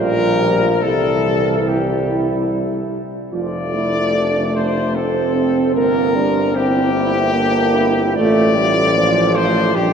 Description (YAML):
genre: classical, hymn-like piece for brass band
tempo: 74 BPM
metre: 3/4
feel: uneven beats, rubato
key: F major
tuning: A4 = 439 Hz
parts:
  - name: mellow trumpet section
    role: melody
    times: 0.0-9.9 s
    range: G4 to D5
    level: -19 LUFS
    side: left 4 dB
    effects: none
  - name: mellow French horn section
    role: second line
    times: 0.0-9.9 s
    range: C4 to F4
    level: -23 LUFS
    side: right 6 dB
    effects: none
  - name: dark trombone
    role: accompaniment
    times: 0.0-9.9 s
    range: E3 to D4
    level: -22 LUFS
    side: right 2 dB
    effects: none
  - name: mellow euphonium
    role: accompaniment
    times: 0.0-9.9 s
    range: F3 to C4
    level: -23 LUFS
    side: equal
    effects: none
  - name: warm tuba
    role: bass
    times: 0.0-9.9 s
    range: F1 to C2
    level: -21 LUFS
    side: equal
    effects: none
room: wet cathedral reverb, RT60 5.0 s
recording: none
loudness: -14 LUFS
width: side -7 dB against mid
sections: 0.0-9.9 A section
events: none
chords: 0.0 Gm7/Bb; 0.8 C; 3.3 F; 5.8 C7/G; 8.2 F/A